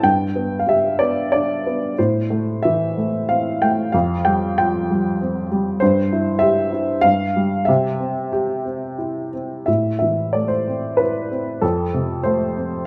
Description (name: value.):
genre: classical, lyrical solo piano.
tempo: 93 BPM.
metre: 3/4.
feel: rubato.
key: C major, A minor from 9.7 s.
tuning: A4 = 440 Hz.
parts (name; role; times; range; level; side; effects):
dark upright piano; solo; 0.0-12.9 s; F2 to G5; -20 LUFS; equal; none.
room: moderate recital hall reverb, RT60 1.5 s.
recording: none.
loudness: -20 LUFS.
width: mono.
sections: 0.0-9.7 A section; 9.7-12.9 B section.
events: none.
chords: 0.0 G; 2.0 Am; 3.9 Fsus2; 5.8 C/G; 7.0 N.C.; 7.7 C; 9.7 Am; 11.6 F.